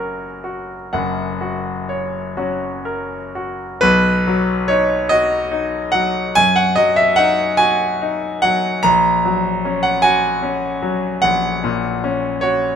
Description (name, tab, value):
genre	classical, romantic nocturne for solo piano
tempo	40-53 BPM (dotted quarters)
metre	12/8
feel	rubato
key	B major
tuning	A4 = 440 Hz
part	bright concert grand piano	solo	0.0-12.8 s	F#1 to A#5	-15 LUFS	equal	none
room	light reverb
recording	close, detailed microphones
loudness	-15 LUFS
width	side -8 dB against mid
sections	0.0-3.8 A section; 3.8-12.8 B section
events	none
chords	0.0 F#; 3.8 B; 8.8 F#/A#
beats	0.93 2.38 | 3.83 5.10 6.35 7.59 | 8.84 10.03 11.23 12.43